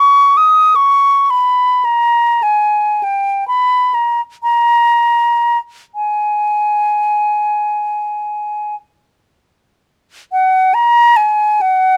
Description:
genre	classical, free, expressive piece for unaccompanied flute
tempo	33-55 BPM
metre	4/4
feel	rubato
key	G# minor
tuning	A4 = 444 Hz
part	concert flute	solo	0.0-12.0 s	F#5 to D#6	-13 LUFS	equal	none
room	little or no reverb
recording	close, detailed microphones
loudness	-13 LUFS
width	mono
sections	0.0-10.3 A section; 10.3-12.0 B section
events	none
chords	none

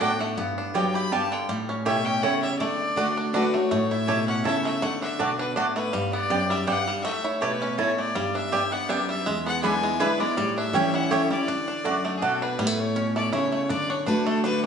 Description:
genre	bluegrass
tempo	162 BPM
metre	3/4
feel	swing 54% on 8ths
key	unclear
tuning	A4 = 442 Hz
part	bluegrass banjo	melody	0.0-14.7 s	D3 to G4	-30 LUFS	right 2 dB	none
part	clear fiddle	melody	0.0-14.6 s	G#4 to B5	-29 LUFS	left 2 dB	none
part	picked steel-string acoustic guitar	accompaniment	0.0-14.7 s	E2 to F#4	-27 LUFS	equal	none
part	mandolin	stabs	0.0-12.3 s	A3 to B5	-27 LUFS	right 2 dB	none
room	wet large studio reverb, RT60 1.2 s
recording	band playing live in one room, nothing above 10.9 kHz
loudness	-22 LUFS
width	side -7 dB against mid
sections	0.0-3.7 A section; 3.7-12.6 B section; 12.6-14.7 B section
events	none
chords	0.4 G; 1.5 A7; 2.6 D; 3.7 A; 4.8 D; 5.9 G; 7.0 A; 8.2 G; 9.3 E7; 10.4 A7sus4; 10.7 A7; 11.5 D; 12.6 A; 13.7 D

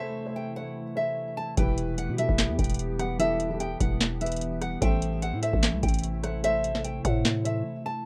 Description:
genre	hip hop, trap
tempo	148 BPM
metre	4/4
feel	half-time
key	unclear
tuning	A4 = 440 Hz
part	nylon-string guitar	melody	0.0-8.0 s	E5 to A5	-34 LUFS	equal	none
part	dark concert grand piano	accompaniment	0.0-8.1 s	E3 to E5	-37 LUFS	equal	none
part	glassy FM pad	sustained chords	0.0-8.0 s	C3 to G4	-39 LUFS	equal	ensemble chorus, built-in reverb
part	growling 808-style bass	bass	1.6-7.6 s	E1 to B2	-32 LUFS	equal	none
part	booming analog drum machine	drums	1.6-7.6 s	handclaps, hi-hat, kick drum, rim click, snare drum	-30 LUFS	equal	none
room	little or no reverb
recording	rough home demo mix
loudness	-28 LUFS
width	mono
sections	0.0-8.1 A section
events	break 7.7-8.1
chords	0.0 Am; 1.6 Em; 4.8 Am

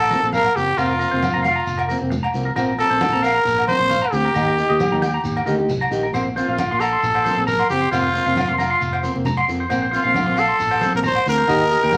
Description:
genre	highlife guitar band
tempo	134 BPM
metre	4/4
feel	swing 55% on 16ths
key	unclear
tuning	A4 = 440 Hz
part	growling trumpet	melody	0.0-12.0 s	F4 to C5	-21 LUFS	equal	none
part	clean electric guitar	arpeggios	0.0-11.9 s	Bb4 to C6	-26 LUFS	equal	none
part	fingered electric bass	bass	0.0-12.0 s	F1 to F2	-29 LUFS	equal	none
part	agogo bells	percussion	0.0-12.0 s	none	-30 LUFS	equal	none
part	nylon-string guitar	accompaniment	0.1-12.0 s	Eb3 to G4	-27 LUFS	equal	none
part	congas	percussion	0.1-12.0 s	none	-31 LUFS	equal	none
part	shekere	percussion	0.1-12.0 s	none	-36 LUFS	equal	none
room	wet studio ambience, RT60 0.5 s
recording	vinyl crackle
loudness	-19 LUFS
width	mono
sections	0.0-12.0 A section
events	none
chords	0.0 Bbsus2; 0.8 Fsus4; 2.6 Bbsus2; 4.3 Eb; 6.1 Bbsus2; 7.9 Fsus4; 9.7 Bbsus2

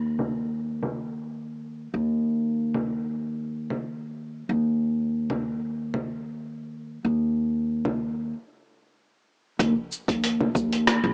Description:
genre	organic downtempo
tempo	94 BPM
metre	4/4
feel	swing 53% on 16ths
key	unclear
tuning	A4 = 436 Hz
part	upright bass	bass	0.0-11.1 s	Bb1 to Eb2	-28 LUFS	equal	none
part	dusty soul sampler-style drum kit	drums	0.2-11.0 s	cabasa, congas, hi-hat, rim click	-29 LUFS	equal	low-pass filter on perc, cassette tape, low-pass filter on snare, low-pass filter on hats, low-pass filter on room
part	electronic kick drum	drums	9.6-10.7 s	none	-32 LUFS	equal	overdrive, cassette tape
room	light reverb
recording	home recording on cassette, small speaker sound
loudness	-27 LUFS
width	mono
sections	0.0-9.6 A section; 9.6-11.1 B section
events	filter sweep on drum 0.0-9.6; stop 8.3-9.6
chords	none

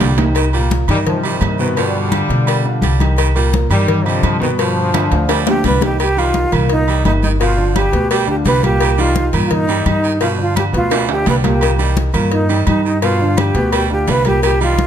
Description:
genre	latin, salsa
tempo	171 BPM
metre	4/4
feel	straight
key	C minor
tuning	A4 = 440 Hz
part	bright trombone section	melody	0.0-5.6 s	C3 to G3	-20 LUFS	left 2 dB	none
part	raspy baritone saxophone	second line	0.0-14.8 s	Eb3 to G3	-25 LUFS	right 8 dB	none
part	warm upright piano	accompaniment	0.0-14.9 s	Bb2 to Eb5	-21 LUFS	equal	none
part	upright bass	bass	0.0-14.9 s	G1 to B2	-17 LUFS	equal	none
part	congas	percussion	0.0-14.9 s	none	-22 LUFS	left 3 dB	none
part	cowbell and bongos	percussion	0.0-14.9 s	none	-24 LUFS	left 10 dB	none
part	timbales and agogo bells	percussion	0.0-14.8 s	none	-23 LUFS	right 7 dB	none
part	breathy concert flute	melody	5.5-14.9 s	Eb4 to B4	-18 LUFS	right 2 dB	none
room	light reverb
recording	none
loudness	-13 LUFS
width	side -9 dB against mid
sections	0.0-6.0 A section; 6.0-14.9 B section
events	drum fill 0.0-0.4, 4.9-6.0, 10.9-11.6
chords	0.4 Cm7; 1.8 G7; 3.2 Cm7; 4.6 G7; 6.0 Cm7; 7.4 G7; 8.8 Cm7; 10.2 G7; 11.6 Cm7; 13.0 G7

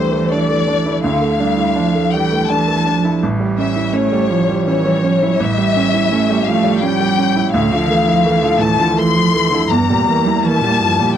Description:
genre	neoclassical piano and strings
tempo	83 BPM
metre	3/4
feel	rubato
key	D minor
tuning	A4 = 436 Hz
part	rich chamber violin section	melody	0.0-11.2 s	C5 to C6	-18 LUFS	left 7 dB	none
part	rich cello	second line	0.0-11.2 s	G2 to A3	-18 LUFS	right 5 dB	none
part	clear baby grand piano	accompaniment	0.0-11.2 s	A1 to E4	-17 LUFS	right 2 dB	none
room	moderate booth ambience, RT60 0.2 s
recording	dry, close 1970s-style studio recording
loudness	-13 LUFS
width	side -9 dB against mid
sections	0.0-11.2 A section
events	none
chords	0.0 Dmadd9; 3.2 A7; 7.5 Dmadd9; 9.7 Edim

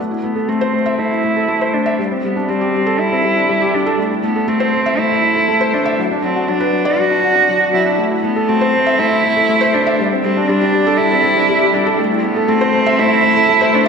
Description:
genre	electronica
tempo	120 BPM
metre	4/4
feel	straight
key	A dorian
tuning	A4 = 440 Hz
part	felt-muted upright piano	riff	0.0-13.9 s	F#3 to E5	-16 LUFS	left 1 dB	none
part	warm cello	melody	0.2-13.9 s	B3 to F#4	-15 LUFS	right 2 dB	low-pass filter
room	wet concert hall reverb, RT60 2.1 s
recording	none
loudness	-12 LUFS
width	side -6 dB against mid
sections	0.0-13.9 A section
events	build-up 0.0-13.9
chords	0.0 Am; 2.0 D7sus4; 4.0 Am; 6.0 Bm; 8.0 Am; 10.0 D7sus4; 12.0 Am

